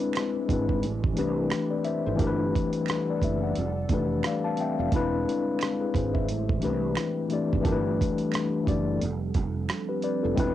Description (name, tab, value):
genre	lo-fi hip hop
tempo	88 BPM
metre	4/4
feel	swing 58% on 16ths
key	unclear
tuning	A4 = 438 Hz
part	mellow tine electric piano	accompaniment	0.0-10.5 s	E3 to A5	-26 LUFS	left 4 dB	medium stereo tremolo, low-pass filter, cassette tape
part	deep dark ambient pad	sustained chords	0.0-10.5 s	D3 to F#5	-36 LUFS	right 2 dB	chorus, built-in reverb, low-pass filter, cassette tape
part	dusty soul sampler-style drum kit	drums	0.0-10.5 s	hi-hat, kick drum, rim click	-29 LUFS	right 3 dB	cassette tape
part	finger snap	percussion	0.1-9.9 s	none	-40 LUFS	right 12 dB	none
part	fretless electric bass	bass	0.5-10.5 s	E1 to C2	-30 LUFS	right 2 dB	tube saturation, ensemble chorus
room	moderate small room reverb, RT60 0.5 s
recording	home recording on cassette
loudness	-24 LUFS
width	side -12 dB against mid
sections	0.0-10.5 A section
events	none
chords	0.0 E7b13; 0.8 Am9; 2.2 Gmaj9; 3.6 F6; 4.9 E7b13; 6.3 Am9; 7.6 Gmaj9; 9.0 F6